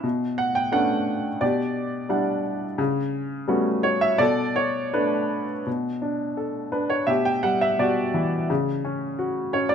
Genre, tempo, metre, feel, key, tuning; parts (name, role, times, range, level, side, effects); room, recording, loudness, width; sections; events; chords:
classical, lyrical solo piano; 85 BPM; 4/4; rubato; B minor; A4 = 440 Hz
clear grand piano; solo; 0.0-9.7 s; B2 to G5; -22 LUFS; equal
light reverb; close, detailed microphones; -22 LUFS; side -7 dB against mid
0.0-5.7 A section; 5.7-9.7 B section
0.0 Bm9; 1.4 Em9/B; 2.8 A13/C#; 4.2 Bm7; 7.1 Emadd9/B; 8.5 C#sus4